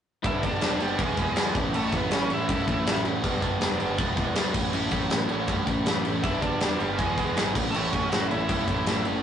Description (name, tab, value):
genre	punk rock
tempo	160 BPM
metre	4/4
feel	straight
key	A mixolydian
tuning	A4 = 444 Hz
part	crunchy overdriven guitar	riff	0.2-9.2 s	G2 to E4	-28 LUFS	equal	none
part	growling picked electric bass	bass	0.2-9.2 s	E1 to G2	-35 LUFS	left 1 dB	overdrive
part	big rock drum kit	drums	0.2-9.1 s	crash cymbal, kick drum, snare drum	-27 LUFS	equal	none
part	bluesy overdriven lead guitar	melody	0.3-3.0, 6.2-9.0 s	G3 to F#5	-30 LUFS	right 2 dB	distortion
room	moderate studio reverb, RT60 0.5 s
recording	rough rehearsal-room recording, warm saturation, nothing above 10.4 kHz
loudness	-23 LUFS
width	side -9 dB against mid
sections	0.2-9.2 A section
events	none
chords	0.2 G; 1.0 E; 1.6 A; 3.2 G; 4.0 E; 4.6 A; 6.2 G; 7.0 E; 7.6 A